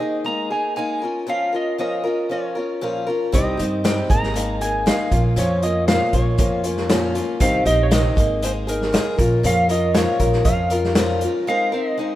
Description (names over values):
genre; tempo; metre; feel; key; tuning
folk rock and heartland rock; 118 BPM; 4/4; straight; unclear; A4 = 441 Hz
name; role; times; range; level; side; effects
clean lap steel guitar; melody; 0.0-12.2 s; Bb4 to Bb5; -24 LUFS; right 2 dB; none
picked acoustic archtop guitar; accompaniment; 0.0-12.2 s; Bb2 to Bb4; -22 LUFS; left 2 dB; none
upright bass; bass; 3.3-11.2 s; Ab1 to G2; -22 LUFS; right 1 dB; none
vintage drum kit; drums; 3.3-11.3 s; hi-hat, kick drum, snare drum; -21 LUFS; equal; none
room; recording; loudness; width
light reverb, small room ambience; rough home demo mix; -17 LUFS; side -14 dB against mid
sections
0.0-11.5 A section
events
none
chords
0.0 Absus2; 1.0 Bbm; 3.3 Cm; 4.1 Absus2; 5.1 Bbm; 7.4 Cm; 8.2 Absus2; 9.2 Bbm; 11.5 Abadd9